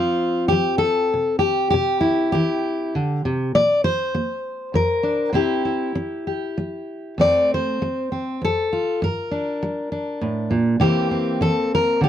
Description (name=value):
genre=folk, solo fingerstyle acoustic guitar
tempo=100 BPM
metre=3/4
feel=rubato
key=F major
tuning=A4 = 440 Hz
part: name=fingerpicked steel-string acoustic guitar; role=solo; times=0.0-12.1 s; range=F2 to D5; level=-19 LUFS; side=left 1 dB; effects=none
room=light reverb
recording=dry, close 1970s-style studio recording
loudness=-19 LUFS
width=side -10 dB against mid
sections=0.0-12.1 A section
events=none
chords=0.0 F5; 1.8 C; 3.6 Bbadd9; 5.3 C; 7.2 F; 9.0 Gmadd9; 10.8 C7